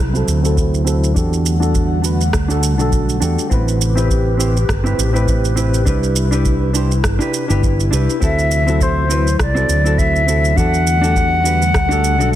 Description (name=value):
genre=sunset chillout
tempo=102 BPM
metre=4/4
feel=swing 56% on 16ths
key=unclear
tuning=A4 = 440 Hz
part: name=airy breathy pad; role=sustained chords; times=0.0-12.4 s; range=C3 to F#5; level=-24 LUFS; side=left 1 dB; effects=chorus
part: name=fretless electric bass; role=bass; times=0.0-12.4 s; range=G1 to E2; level=-16 LUFS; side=equal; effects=analog chorus
part: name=hollow-body jazz guitar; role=accompaniment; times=0.1-12.4 s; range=C4 to C5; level=-21 LUFS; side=right 1 dB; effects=auto-pan, vintage 12-bit sampler grit, low-pass filter, digital delay
part: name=electronic shaker and rim click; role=drums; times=0.2-12.3 s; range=none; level=-25 LUFS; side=right 4 dB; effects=overdrive
part: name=electronic kick drum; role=drums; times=0.6-11.9 s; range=none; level=-20 LUFS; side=equal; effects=none
part: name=mellow wooden flute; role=melody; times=8.2-12.3 s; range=C5 to F#5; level=-17 LUFS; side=left 2 dB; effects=digital delay
room=light reverb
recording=dense, heavily limited modern master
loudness=-13 LUFS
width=side -12 dB against mid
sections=0.0-12.4 A section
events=filter sweep on hollow-body jazz guitar 0.0-12.4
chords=0.0 D9; 1.2 Em11; 3.5 Am9; 5.9 Cmaj7; 8.2 D9; 10.6 Em11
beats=0.57 | 1.16 1.75 2.33 2.92 | 3.51 4.10 4.69 5.27 | 5.86 6.45 7.04 7.63 | 8.21 8.80 9.39 9.98 | 10.57 11.16 11.74 12.33